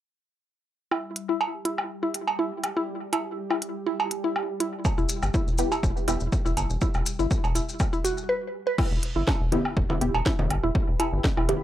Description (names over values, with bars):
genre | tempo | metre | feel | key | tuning
minimal techno | 122 BPM | 4/4 | swing 53% on 16ths | E minor | A4 = 441 Hz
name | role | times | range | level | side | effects
mallet-like synth pluck | riff | 0.9-11.4 s | E4 to B4 | -29 LUFS | equal | chorus, sidechain pumping, analog delay
woodblock, cowbell and congas | percussion | 0.9-11.6 s | none | -30 LUFS | right 2 dB | analog delay
bubbling stepped-filter texture | texture | 0.9-8.3 s | G3 to G4 | -38 LUFS | right 3 dB | chorus, built-in reverb, sidechain pumping
techno drum kit | drums | 1.2-11.6 s | crash cymbal, hi-hat, snare drum | -30 LUFS | equal | overdrive
electronic kick drum | drums | 4.8-11.3 s | none | -26 LUFS | equal | overdrive
maracas | percussion | 4.8-8.3 s | none | -36 LUFS | left 4 dB | none
rubbery square bass | bass | 5.0-11.5 s | E1 to G1 | -28 LUFS | equal | sidechain pumping
filtered dub chord stab | stabs | 5.6-6.2, 9.5-11.6 s | B3 to G4 | -29 LUFS | equal | phaser, wide subtle chorus, analog delay
granular cloud pad | texture | 10.2-11.6 s | G4 to B5 | -40 LUFS | equal | built-in reverb, sidechain pumping
room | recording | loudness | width
light reverb | dry, gritty hardware recording | -24 LUFS | side -12 dB against mid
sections
0.9-8.8 A section; 8.8-11.6 B section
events
filter sweep on synth arpeggio sound 0.9-8.8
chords
0.9 Em